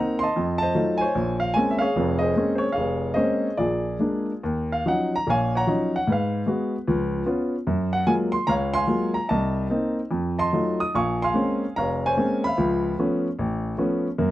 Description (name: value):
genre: solo jazz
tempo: 148 BPM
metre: 4/4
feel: swing 66% on 8ths, rubato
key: Bb minor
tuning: A4 = 441 Hz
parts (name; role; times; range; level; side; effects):
- warm baby grand piano; solo; 0.0-14.3 s; F1 to Eb6; -21 LUFS; equal; none
room: light reverb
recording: dry, close 1970s-style studio recording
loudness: -21 LUFS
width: side -15 dB against mid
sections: 0.0-4.4 A section; 4.4-14.3 B section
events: none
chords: 0.4 F7b9; 1.2 Bbm9; 3.6 Bb7; 4.4 Ebm9; 6.1 Abm7; 6.9 Db7; 7.7 Gbmaj9; 9.3 Cm7; 10.1 F7b9; 10.9 Bbm9; 12.6 Db7alt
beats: 0.36 0.76 | 1.16 1.56 1.97 2.37 | 2.78 3.18 3.60 4.02 | 4.45 4.86 5.27 5.68 | 6.08 6.48 6.88 7.28 | 7.68 8.08 8.48 8.88 | 9.29 9.70 10.11 10.53 | 10.94 11.35 11.76 12.17 | 12.58 12.98 13.39 13.79 | 14.19